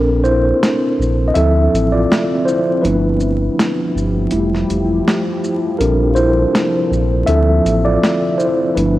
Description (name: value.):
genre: lo-fi hip hop.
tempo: 81 BPM.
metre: 4/4.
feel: swing 56% on 16ths.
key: unclear.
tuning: A4 = 440 Hz.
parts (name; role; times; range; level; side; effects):
mellow tine electric piano; accompaniment; 0.0-9.0 s; F3 to E5; -15 LUFS; equal; medium stereo tremolo, cassette tape, low-pass filter.
deep dark ambient pad; sustained chords; 0.5-9.0 s; C3 to E5; -22 LUFS; equal; chorus, built-in reverb, low-pass filter, cassette tape.
sub bass with octave; bass; 0.0-9.0 s; E1 to D2; -17 LUFS; equal; none.
dusty soul sampler-style drum kit; drums; 0.2-9.0 s; hi-hat, shaker, snare drum; -20 LUFS; equal; overdrive, cassette tape.
room: light reverb.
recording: home recording on cassette, vinyl crackle.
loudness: -13 LUFS.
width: side -15 dB against mid.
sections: 0.0-9.0 A section.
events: break 0.0-9.0; tine electric piano solo 0.0-9.0.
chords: 0.0 Bbmaj9; 1.4 Dm9; 2.8 G13; 4.3 Fmaj9; 5.8 Bbmaj9; 7.3 Dm9.